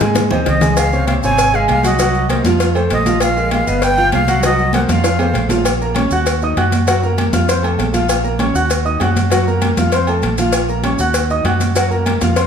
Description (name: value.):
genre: latin, salsa.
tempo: 197 BPM.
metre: 4/4.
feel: straight.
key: Bb minor.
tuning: A4 = 440 Hz.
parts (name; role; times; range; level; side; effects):
clear grand piano; accompaniment; 0.0-12.5 s; C3 to Gb6; -18 LUFS; right 1 dB; none.
fingered electric bass; bass; 0.0-12.5 s; G1 to Ab2; -18 LUFS; equal; none.
congas; percussion; 0.0-12.5 s; none; -22 LUFS; right 1 dB; none.
cowbell and bongos; percussion; 0.0-12.5 s; none; -22 LUFS; left 4 dB; none.
maracas; percussion; 0.0-12.5 s; none; -29 LUFS; right 4 dB; none.
agogo bells and timbales; percussion; 0.2-12.5 s; none; -25 LUFS; right 1 dB; none.
breathy bright concert flute; melody; 0.5-5.5 s; Eb5 to Ab5; -18 LUFS; right 1 dB; none.
room: wet large studio reverb, RT60 0.8 s.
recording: band playing live in one room.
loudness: -13 LUFS.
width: side -7 dB against mid.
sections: 0.0-5.7 A section; 5.7-12.5 B section.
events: drum fill 0.0-0.8, 5.0-5.7.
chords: 0.0 Ab; 0.8 Dbmaj7; 2.0 Cm7b5; 2.6 F7; 3.2 Bb5; 3.8 Gaug7; 4.4 Cm7b5; 5.0 F; 5.7 Bbm; 6.3 Ebm; 6.9 Gb; 7.5 F; 8.1 Bbm; 8.7 Ebm; 9.3 Gb; 9.9 F; 10.5 Bbm; 11.1 Ebm; 11.8 Gb.